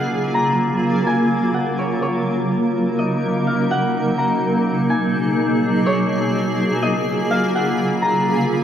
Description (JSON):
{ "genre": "hip hop", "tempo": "125 BPM", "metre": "4/4", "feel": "half-time", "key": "unclear", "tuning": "A4 = 442 Hz", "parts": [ { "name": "concert harp", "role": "melody", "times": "0.0-8.6 s", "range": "Db5 to Bb5", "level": "-24 LUFS", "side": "left 1 dB", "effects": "tape echo" }, { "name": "granular cloud pad", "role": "sustained chords", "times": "0.0-8.6 s", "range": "Cb3 to Bb4", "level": "-18 LUFS", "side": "equal", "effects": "built-in reverb" } ], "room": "light reverb, small room ambience", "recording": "rough home demo mix", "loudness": "-17 LUFS", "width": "side -9 dB against mid", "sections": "0.0-2.0 A section; 2.0-8.6 B section", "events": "none", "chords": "0.0 Gbmaj9; 2.0 Ebm7; 3.9 Abm9; 5.9 Gbmaj9" }